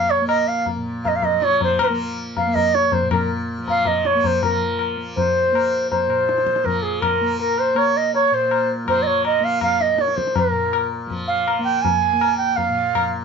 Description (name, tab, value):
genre	indian classical, Hindustani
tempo	161 BPM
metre	4/4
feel	straight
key	Bb raga kafi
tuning	A4 = 439 Hz
part	bright reedy bansuri	melody	0.0-13.1 s	Ab4 to Ab5	-18 LUFS	right 2 dB	none
part	tanpura	drone	0.0-13.2 s	Bb2 to Bb3	-28 LUFS	right 1 dB	none
part	tabla	percussion	0.3-13.1 s	none	-24 LUFS	left 6 dB	none
room	light reverb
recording	nothing above 7.5 kHz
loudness	-17 LUFS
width	side -6 dB against mid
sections	0.0-4.4 A section; 4.4-13.2 A section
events	speeding up 0.0-13.2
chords	none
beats	0.27 0.65 1.03 | 1.41 1.79 2.17 2.54 | 2.92 3.30 3.67 4.05 | 4.42 4.80 5.17 5.55 | 5.92 6.29 6.67 7.04 | 7.41 7.78 8.15 8.52 | 8.89 9.26 9.63 10.00 | 10.37 10.74 11.11 11.47 | 11.84 12.20 12.57 12.93